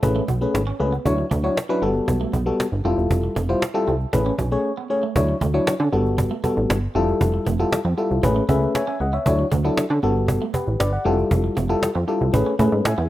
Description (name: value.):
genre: early-eighties boogie funk.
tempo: 117 BPM.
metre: 4/4.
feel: straight.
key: unclear.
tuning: A4 = 442 Hz.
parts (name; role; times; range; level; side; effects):
FM electric piano; accompaniment; 0.0-13.1 s; F#3 to G#5; -22 LUFS; left 2 dB; chorus.
clean electric guitar; riff; 0.0-13.1 s; A3 to D4; -32 LUFS; right 8 dB; wide subtle chorus.
plucky analog bass; bass; 0.0-13.1 s; E1 to D3; -22 LUFS; right 1 dB; none.
cajon; drums; 0.0-13.0 s; none; -24 LUFS; right 1 dB; none.
room: digital ambience.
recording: rough home demo mix.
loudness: -18 LUFS.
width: side -14 dB against mid.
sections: 0.0-5.2 A section; 5.2-13.1 B section.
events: break 4.6-5.2; FM electric piano fill 8.2-9.3.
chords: 0.0 Amaj9; 1.1 Dmaj9; 1.8 Gmaj9; 2.8 Fmaj9; 4.1 Amaj9; 5.2 Dmaj9; 5.9 Gmaj9; 7.0 Fmaj9; 8.2 Amaj9; 9.3 Dmaj9; 10.0 Gmaj9; 11.1 Fmaj9; 12.3 Amaj9.